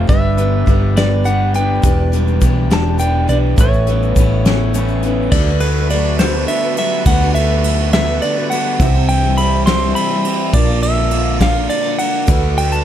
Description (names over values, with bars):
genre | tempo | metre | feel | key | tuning
folk rock and heartland rock | 69 BPM (dotted quarters) | 6/8 | straight | D mixolydian from 5.3 s | A4 = 440 Hz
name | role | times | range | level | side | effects
pedal steel guitar | melody | 0.0-12.8 s | B4 to C6 | -20 LUFS | right 1 dB | none
picked steel-string acoustic guitar | accompaniment | 0.0-12.8 s | Bb2 to C5 | -23 LUFS | left 5 dB | none
hand-pumped harmonium | sustained chords | 0.0-12.8 s | E3 to E5 | -28 LUFS | left 1 dB | none
crunchy overdriven guitar | riff | 0.0-12.8 s | E2 to D4 | -22 LUFS | right 1 dB | none
hollow-body short-scale fingered electric bass | bass | 0.0-12.8 s | E1 to D2 | -16 LUFS | equal | none
soft brush drum kit | drums | 0.1-12.7 s | crash cymbal, hi-hat, kick drum, ride cymbal, snare drum | -17 LUFS | equal | none
bright reed electric piano | accompaniment | 1.8-12.8 s | D4 to E5 | -29 LUFS | right 12 dB | fast tremolo
egg shaker | percussion | 1.8-5.0, 12.3-12.8 s | none | -32 LUFS | left 17 dB | none
room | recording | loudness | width
studio reverb | dark, warm production | -12 LUFS | side -10 dB against mid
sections
0.0-5.3 A section; 5.3-12.8 B section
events
none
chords
0.1 G; 1.8 Em7; 3.6 Aadd9; 5.3 D6; 8.8 C; 10.5 Bb; 12.3 D6